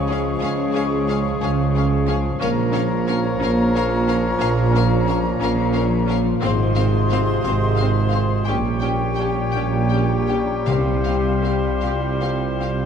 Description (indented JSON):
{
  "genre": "classical, slow romantic movement for symphony orchestra",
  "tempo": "51-62 BPM (dotted quarters)",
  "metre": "12/8",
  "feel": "rubato",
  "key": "unclear",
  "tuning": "A4 = 442 Hz",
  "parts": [
    { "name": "bright clarinet", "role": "second line", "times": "0.0-12.9 s", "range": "G4 to Bb4", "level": "-31 LUFS", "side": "left 4 dB", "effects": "none" },
    { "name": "bright small flute group", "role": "second line", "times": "0.0-12.9 s", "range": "F5 to Db6", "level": "-30 LUFS", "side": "left 5 dB", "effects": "none" },
    { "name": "mellow oboe", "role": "second line", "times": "0.0-12.9 s", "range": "C5 to Db5", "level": "-32 LUFS", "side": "right 1 dB", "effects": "none" },
    { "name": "warm bassoon", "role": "accompaniment", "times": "0.0-12.9 s", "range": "F3 to G3", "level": "-29 LUFS", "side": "right 1 dB", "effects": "none" },
    { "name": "mellow trombone section", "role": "sustained chords", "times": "0.0-12.9 s", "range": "Bb2 to Bb3", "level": "-29 LUFS", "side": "right 2 dB", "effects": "none" },
    { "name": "warm French horn section", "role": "sustained chords", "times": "0.0-12.9 s", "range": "C4 to G4", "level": "-28 LUFS", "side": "left 9 dB", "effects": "none" },
    { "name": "concert harp", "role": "arpeggios", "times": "0.0-12.9 s", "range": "Ab2 to C6", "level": "-31 LUFS", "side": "left 10 dB", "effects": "none" },
    { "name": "dark tuba", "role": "bass", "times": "0.0-12.8 s", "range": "Ab1 to Db2", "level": "-26 LUFS", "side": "right 2 dB", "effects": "none" },
    { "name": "rich symphonic double bass section", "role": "bass", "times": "0.0-12.8 s", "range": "Ab1 to Db2", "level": "-24 LUFS", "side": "right 2 dB", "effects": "none" },
    { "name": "warm symphonic cello section", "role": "bass", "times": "0.0-12.8 s", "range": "Ab2 to Db3", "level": "-25 LUFS", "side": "right 3 dB", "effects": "none" },
    { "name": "rich studio violin section", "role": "melody", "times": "0.1-12.7 s", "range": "F5 to G5", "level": "-34 LUFS", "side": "left 5 dB", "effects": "none" },
    { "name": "warm symphonic violin section", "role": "second line", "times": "0.1-12.7 s", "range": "G4 to C5", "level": "-34 LUFS", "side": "left 6 dB", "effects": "none" },
    { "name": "warm studio viola section", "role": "accompaniment", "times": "0.1-12.7 s", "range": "C4 to Db4", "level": "-32 LUFS", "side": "left 1 dB", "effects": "none" },
    { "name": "timpani", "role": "percussion", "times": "10.7-11.8 s", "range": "C3", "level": "-26 LUFS", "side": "left 1 dB", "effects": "none" }
  ],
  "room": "moderate scoring stage reverb, RT60 1.9 s",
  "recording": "dark, warm production",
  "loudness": "-17 LUFS",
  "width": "side -7 dB against mid",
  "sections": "0.0-12.9 A section",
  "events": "none",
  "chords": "0.0 Db; 2.4 Bbm; 6.4 Fm/Ab; 8.5 Gdim/Bb; 10.7 Csus4"
}